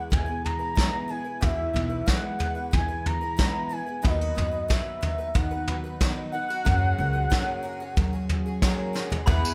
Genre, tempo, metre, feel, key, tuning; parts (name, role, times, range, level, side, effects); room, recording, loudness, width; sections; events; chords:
indie folk with a building arrangement; 92 BPM; 4/4; straight; A4 = 440 Hz
gliding portamento lead; melody; 0.0-8.6 s; D#5 to A#5; -33 LUFS; equal; chorus, slapback echo
bright grand piano; accompaniment; 0.0-9.5 s; F#1 to E5; -44 LUFS; equal
fingerpicked steel-string acoustic guitar; accompaniment; 0.0-9.5 s; B2 to B4; -39 LUFS; equal
picked twelve-string acoustic guitar; accompaniment; 0.0-9.5 s; D#3 to B4; -41 LUFS; equal
upright bass; bass; 0.1-9.5 s; B1 to F#3; -33 LUFS; equal
soft brush drum kit; drums; 0.1-9.4 s; kick drum, snare drum, toms; -28 LUFS; equal
glockenspiel with hard plastic mallets; second line; 9.3-9.5 s; B5; -33 LUFS; equal
bluegrass banjo; arpeggios; 9.3-9.5 s; B3; -35 LUFS; equal
tambourine; percussion; 9.4-9.5 s; -32 LUFS; equal
light reverb; -26 LUFS; mono
0.0-9.3 A section
drum fill 8.9-9.3
0.0 E; 4.0 B/D#; 6.7 F#add9